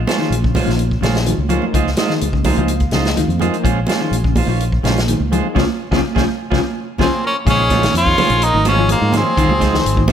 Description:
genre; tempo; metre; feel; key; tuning
afrobeat; 126 BPM; 4/4; straight; Bb minor; A4 = 441 Hz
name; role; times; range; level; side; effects
fingered electric bass; bass; 0.0-10.1 s; Ab1 to Ab2; -19 LUFS; equal; none
overdriven tine electric piano; accompaniment; 0.1-10.0 s; F3 to Bb5; -26 LUFS; left 6 dB; auto-pan
clean electric guitar; stabs; 0.1-10.1 s; Ab3 to C5; -23 LUFS; right 7 dB; spring reverb
vintage drum kit; drums; 0.1-10.1 s; hi-hat, kick drum, snare drum; -21 LUFS; left 1 dB; none
congas; percussion; 0.1-10.1 s; none; -22 LUFS; right 6 dB; none
semi-hollow electric guitar; arpeggios; 0.2-10.1 s; C3 to F3; -23 LUFS; left 6 dB; none
edgy tenor saxophone; melody; 7.0-10.1 s; Bb3 to F4; -16 LUFS; equal; slapback echo
warm trumpet; second line; 7.0-10.1 s; F4 to Db5; -25 LUFS; right 2 dB; none
room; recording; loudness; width
light reverb; none; -13 LUFS; side -9 dB against mid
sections
0.0-7.5 A section; 7.5-10.1 B section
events
tine electric piano fill 2.2-3.6; band accent 5.6-7.5; drum fill 7.0-7.5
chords
0.0 Bbm9; 1.7 Dbmaj9; 3.6 Bbm9; 5.6 Dbmaj7; 7.5 Bbm9

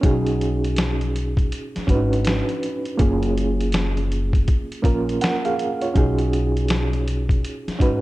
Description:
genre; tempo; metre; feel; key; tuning
lo-fi hip hop; 81 BPM; 4/4; swing 63% on 16ths; unclear; A4 = 440 Hz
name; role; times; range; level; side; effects
reed electric piano; accompaniment; 0.0-8.0 s; A#3 to F#5; -23 LUFS; right 2 dB; overdrive, fast tremolo, cassette tape, low-pass filter
upright bass; bass; 0.0-8.0 s; F#1 to B1; -23 LUFS; equal; none
boom bap sampler-style drum kit; drums; 0.0-8.0 s; hi-hat, kick drum, snare drum; -22 LUFS; equal; vintage 12-bit sampler grit
room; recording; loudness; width
digital ambience; dark, warm production; -19 LUFS; side -17 dB against mid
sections
0.0-8.0 A section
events
none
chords
0.0 B6; 3.0 F#maj7; 6.0 B6

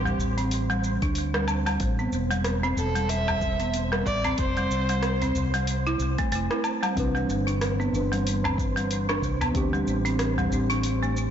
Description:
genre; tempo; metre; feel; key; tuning
organic downtempo; 93 BPM; 4/4; swing 58% on 16ths; unclear; A4 = 439 Hz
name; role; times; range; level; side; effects
mellow fretless electric bass; bass; 0.0-11.3 s; E1 to D2; -28 LUFS; equal; tube saturation
udu; percussion; 0.0-10.7 s; none; -35 LUFS; left 2 dB; none
wind-like tuned noise texture; texture; 0.0-11.3 s; C4; -35 LUFS; right 3 dB; built-in reverb
folk marimba with hard mallets; arpeggios; 0.1-11.2 s; G3 to E4; -28 LUFS; right 1 dB; digital delay
deep house drum kit; drums; 0.1-11.3 s; hi-hat, rim click, shaker, woodblock; -33 LUFS; equal; overdrive
electronic kick drum; drums; 1.0-9.7 s; none; -30 LUFS; equal; overdrive
rich kamancheh; melody; 2.8-5.3 s; A4 to E5; -31 LUFS; right 1 dB; digital delay
muted felt-like synth keys; accompaniment; 6.9-11.3 s; E3 to B4; -30 LUFS; left 2 dB; chorus, sidechain pumping, digital delay
room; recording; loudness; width
moderate lush hall reverb, RT60 2.4 s; blown-out, overdriven recording, overdrive, nothing above 7.6 kHz; -23 LUFS; side -9 dB against mid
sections
0.0-11.3 A section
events
none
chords
0.0 D7sus4; 1.8 Am9; 4.4 Fsus2; 7.0 Cmaj9; 9.5 D9sus4

